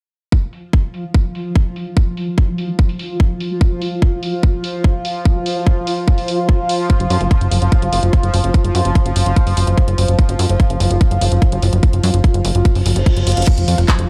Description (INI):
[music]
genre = psychedelic trance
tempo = 146 BPM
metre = 4/4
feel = straight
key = unclear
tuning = A4 = 441 Hz
[part]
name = bubbling stepped-filter texture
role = sustained chords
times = 0.6-14.1 s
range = F3 to F4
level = -24 LUFS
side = equal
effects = chorus, built-in reverb, vintage 12-bit sampler grit, sidechain pumping
[part]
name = electronic kick drum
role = drums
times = 0.3-14.0 s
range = none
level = -15 LUFS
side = equal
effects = studio reverb
[part]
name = garage drum kit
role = drums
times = 0.5-14.1 s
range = crash cymbal, handclaps, hi-hat, rim click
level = -28 LUFS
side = equal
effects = low-pass filter on hats, studio reverb, low-pass filter on cymbals, low-pass filter on snare
[part]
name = plucky analog bass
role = bass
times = 7.0-14.1 s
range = F1 to Gb2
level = -18 LUFS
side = equal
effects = none
[part]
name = reverse cymbal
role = sound effects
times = 12.8-13.5 s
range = none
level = -29 LUFS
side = equal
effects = none
[sound]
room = digital ambience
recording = dark, warm production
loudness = -16 LUFS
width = mono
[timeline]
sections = 0.3-13.5 A section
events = reverse cymbal 12.8-13.5; drum fill 13.3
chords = 0.3 N.C.; 13.5 F5